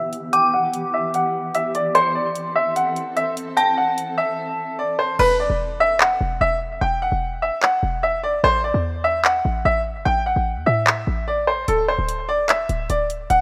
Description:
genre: hip hop, trap.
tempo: 148 BPM.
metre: 4/4.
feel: half-time.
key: E minor.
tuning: A4 = 440 Hz.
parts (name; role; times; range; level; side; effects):
bright baby grand piano; melody; 0.0-13.4 s; A4 to G5; -22 LUFS; equal; low-pass filter.
dark detuned synth bell; second line; 0.0-5.2 s; A5 to E6; -26 LUFS; equal; chorus, tremolo, tape echo.
granular cloud pad; sustained chords; 0.0-5.2 s; E3 to A4; -34 LUFS; equal; built-in reverb, low-pass filter.
trap drum kit; drums; 0.1-13.4 s; crash cymbal, handclaps, hi-hat; -23 LUFS; equal; none.
short 808-style bass; bass; 5.2-13.4 s; D1 to A2; -27 LUFS; equal; none.
room: light reverb.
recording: rough home demo mix.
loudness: -20 LUFS.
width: mono.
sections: 0.0-5.2 A section; 5.2-13.4 B section.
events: filter sweep 0.0-5.2; break 4.4-5.2; hi-hats muted 5.2-11.7.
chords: 0.0 Em; 1.9 Am; 5.2 Esus2; 8.4 A5; 11.7 N.C..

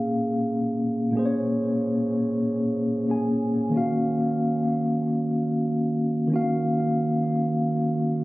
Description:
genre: R&B.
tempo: free time.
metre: none.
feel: none.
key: Eb minor.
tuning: A4 = 440 Hz.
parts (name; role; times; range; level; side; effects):
mellow tine electric piano; solo; 0.0-8.2 s; Bb2 to Ab5; -22 LUFS; equal; medium stereo tremolo, tape echo.
room: light reverb.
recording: recorded on a phone in the room, club reverb, compression.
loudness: -22 LUFS.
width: side -20 dB against mid.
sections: 0.0-8.2 A section.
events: none.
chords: 0.0 Bbm7; 3.7 Ebm9.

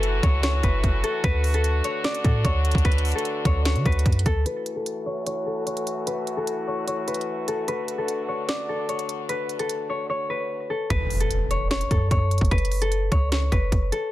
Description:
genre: hip hop, trap.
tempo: 149 BPM.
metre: 4/4.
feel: half-time.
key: F# minor.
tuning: A4 = 441 Hz.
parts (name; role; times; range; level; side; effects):
concert harp; melody; 0.0-14.1 s; A4 to D5; -27 LUFS; left 2 dB; low-pass filter, tape echo.
muted French horn section; sustained chords; 0.0-10.9 s; D3 to F#4; -31 LUFS; equal; low-pass filter.
clean 808-style bass; bass; 0.0-4.5, 10.9-13.9 s; F#1 to D3; -23 LUFS; equal; none.
trap drum kit; drums; 0.0-14.0 s; hi-hat, kick drum, snare drum; -24 LUFS; equal; none.
impact; sound effects; 11.0-12.5 s; none; -32 LUFS; right 1 dB; none.
room: little or no reverb.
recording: dense, heavily limited modern master.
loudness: -22 LUFS.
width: side -15 dB against mid.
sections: 0.0-4.5 A section; 4.5-10.9 B section; 10.9-14.1 A section.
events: filter sweep 4.5-10.9; impact 10.9-12.5.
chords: 0.0 F#m7; 1.2 D; 4.5 F#m7; 7.7 D; 10.9 F#5.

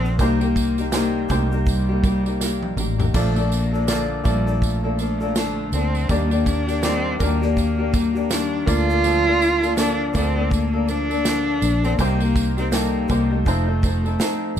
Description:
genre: acoustic pop.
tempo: 81 BPM.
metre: 4/4.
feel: swing 60% on 16ths.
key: Bb major.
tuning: A4 = 435 Hz.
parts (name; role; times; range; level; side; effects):
dark cello; melody; 0.0-14.6 s; G3 to F4; -23 LUFS; left 1 dB; plate reverb.
clear upright piano; accompaniment; 0.0-14.6 s; A3 to D5; -29 LUFS; equal; none.
flamenco guitar; accompaniment; 0.0-14.6 s; Bb2 to A4; -25 LUFS; left 2 dB; none.
vintage muted fingered electric bass; bass; 0.0-14.6 s; F1 to Eb2; -23 LUFS; equal; none.
modern studio drum kit; drums; 0.0-14.6 s; crash cymbal, kick drum, shaker, snare drum, toms; -25 LUFS; right 1 dB; none.
tambourine; percussion; 0.2-14.6 s; none; -33 LUFS; right 6 dB; none.
room: light reverb.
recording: none.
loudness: -18 LUFS.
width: side -9 dB against mid.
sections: 0.0-14.6 A section.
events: drum fill 2.4-3.1.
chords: 0.2 Cm7; 3.1 Bbmaj7; 6.1 Ebmaj7; 8.7 Bbmaj7/D; 12.0 Cm7; 13.5 F7.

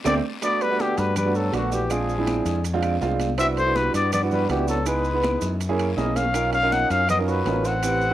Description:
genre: Afro-Cuban jazz.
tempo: 162 BPM.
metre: 4/4.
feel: straight.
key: unclear.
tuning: A4 = 440 Hz.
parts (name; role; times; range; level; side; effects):
warm grand piano; accompaniment; 0.0-8.1 s; Ab3 to B4; -26 LUFS; right 4 dB; cassette tape, plate reverb.
breathy trumpet; melody; 0.1-8.1 s; F#4 to F#5; -24 LUFS; left 2 dB; cassette tape.
modern bright fingered electric bass; bass; 0.1-8.1 s; A1 to G2; -26 LUFS; left 1 dB; none.
claves; percussion; 0.1-8.0 s; none; -40 LUFS; left 9 dB; none.
congas; percussion; 0.1-8.1 s; none; -33 LUFS; left 2 dB; none.
guiro; percussion; 0.1-8.1 s; none; -43 LUFS; left 8 dB; none.
maracas; percussion; 0.1-8.1 s; none; -39 LUFS; right 8 dB; none.
timbales; percussion; 0.1-8.0 s; none; -36 LUFS; right 7 dB; none.
growling tenor saxophone; second line; 0.4-8.1 s; D3 to D#4; -31 LUFS; right 4 dB; cassette tape, plate reverb.
room: moderate studio reverb, RT60 0.6 s.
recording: home recording on cassette.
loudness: -20 LUFS.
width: side -13 dB against mid.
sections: 0.4-8.1 A section.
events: drum fill 0.0-0.4; band accent 0.0-0.4.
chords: 0.4 Gmaj9; 1.9 Bb9; 3.4 Cmaj9#11; 4.9 C#m9; 5.6 F#9; 6.3 Bmaj9#11.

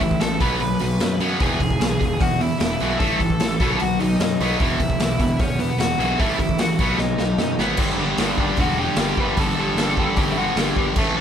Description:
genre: punk rock.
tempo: 150 BPM.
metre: 4/4.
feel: straight.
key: unclear.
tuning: A4 = 439 Hz.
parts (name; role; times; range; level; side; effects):
bluesy overdriven lead guitar; melody; 0.0-10.9 s; B3 to B5; -25 LUFS; left 1 dB; distortion.
sludgy distorted guitar; riff; 0.0-11.2 s; E2 to B3; -22 LUFS; equal; overdrive.
fuzz picked electric bass; bass; 0.0-11.2 s; E1 to F#2; -26 LUFS; equal; overdrive.
raw garage drum kit; drums; 0.0-11.1 s; crash cymbal, hi-hat, kick drum, snare drum; -23 LUFS; equal; none.
room: light reverb.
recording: band playing live in one room.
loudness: -18 LUFS.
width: side -8 dB against mid.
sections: 0.0-7.8 A section; 7.8-11.2 B section.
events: drum fill 7.0-7.8.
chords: 0.4 B5; 1.4 E; 3.0 A5; 3.6 B; 4.6 E5; 6.2 A5; 6.8 B; 7.8 G5.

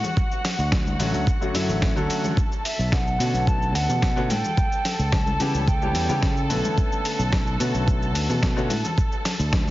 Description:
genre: nu-disco, nu disco.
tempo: 109 BPM.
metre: 4/4.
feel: straight.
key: B minor.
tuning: A4 = 440 Hz.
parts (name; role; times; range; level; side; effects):
muted chamber string section; sustained chords; 0.0-9.7 s; F#4 to A5; -31 LUFS; equal; sidechain pumping.
dusty soul sampler-style drum kit; drums; 0.0-9.7 s; hi-hat, shaker, snare drum; -29 LUFS; equal; small room ambience.
congas; percussion; 0.0-9.7 s; none; -32 LUFS; left 1 dB; none.
electronic kick drum; drums; 0.2-9.6 s; none; -23 LUFS; equal; small room ambience.
overdriven fingered electric bass; bass; 0.6-9.7 s; A1 to C#3; -25 LUFS; equal; none.
clear concert grand piano; accompaniment; 1.0-8.7 s; D3 to A4; -29 LUFS; left 2 dB; tape echo.
mellow silver concert flute; melody; 2.6-6.5 s; E5 to A5; -28 LUFS; right 1 dB; analog delay.
room: light reverb, studio reverb.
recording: heavily compressed radio sound, multiband compression, nothing above 7.5 kHz.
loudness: -20 LUFS.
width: side -16 dB against mid.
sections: 0.0-9.7 A section.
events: none.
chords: 0.2 Dmaj7; 2.4 Bm9; 4.6 C#m7b5; 6.5 Bm9; 9.0 D5.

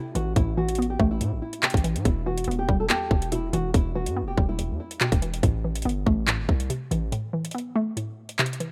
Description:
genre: hip hop, drill.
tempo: 142 BPM.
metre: 4/4.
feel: half-time.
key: unclear.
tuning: A4 = 439 Hz.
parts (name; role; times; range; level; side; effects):
nylon-string guitar; melody; 0.0-5.2 s; E4 to A4; -33 LUFS; equal; none.
hollow square pluck; accompaniment; 0.0-8.7 s; E2 to B3; -31 LUFS; equal; chorus.
hard-hitting 808-style bass; bass; 0.1-7.1 s; E1 to A2; -31 LUFS; equal; none.
drill drum kit; drums; 0.2-8.7 s; handclaps, hi-hat, kick drum; -26 LUFS; equal; none.
room: light reverb.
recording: rough home demo mix.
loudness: -25 LUFS.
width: mono.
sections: 0.0-8.7 A section.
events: break 7.1-8.7.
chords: 0.0 Amadd9; 2.1 Em; 5.4 Amadd9.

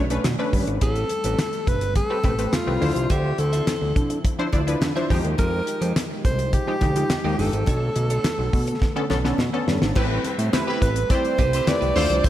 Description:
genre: early-eighties boogie funk.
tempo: 105 BPM.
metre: 4/4.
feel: straight.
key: unclear.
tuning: A4 = 440 Hz.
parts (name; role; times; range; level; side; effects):
funky polysynth comp; accompaniment; 0.0-12.3 s; D3 to D5; -26 LUFS; left 1 dB; chorus, slapback echo.
brassy analog pad; sustained chords; 0.0-12.3 s; D3 to E5; -34 LUFS; equal; none.
fat analog bass; bass; 0.0-12.3 s; G1 to D3; -24 LUFS; equal; none.
clean electric guitar; riff; 0.1-12.3 s; Ab3 to E5; -35 LUFS; right 7 dB; analog chorus, slapback echo.
damped 70s drum kit; drums; 0.1-12.3 s; crash cymbal, handclaps, hi-hat, kick drum, snare drum; -24 LUFS; equal; none.
congas; percussion; 0.2-12.3 s; none; -33 LUFS; left 1 dB; none.
breathy alto saxophone; melody; 0.8-12.3 s; F4 to D5; -26 LUFS; equal; slapback echo.
clear horn section; second line; 10.7-12.1 s; E4 to C5; -29 LUFS; left 1 dB; slapback echo.
room: light reverb.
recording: none.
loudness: -20 LUFS.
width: side -12 dB against mid.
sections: 0.0-10.0 A section; 10.0-12.3 B section.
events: drum fill 8.8-10.0.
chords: 0.0 Bm9; 0.8 Am9; 2.8 Dm9; 5.1 Fm9; 7.7 Bm9; 10.0 Am9.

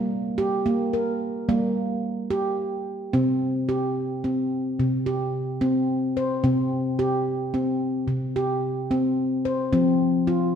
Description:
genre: world meditative, meditative tuned percussion.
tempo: 73 BPM (dotted quarters).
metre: 6/8.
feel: straight.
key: unclear.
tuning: A4 = 440 Hz.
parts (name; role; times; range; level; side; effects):
handpan; solo; 0.0-10.6 s; C3 to C5; -22 LUFS; equal; none.
room: wet scoring stage reverb, RT60 1.6 s, small room ambience.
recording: none.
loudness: -22 LUFS.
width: side -8 dB against mid.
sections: 0.0-3.1 A section; 3.1-10.6 B section.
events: none.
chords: 0.0 Gm; 3.1 C5; 9.7 F5.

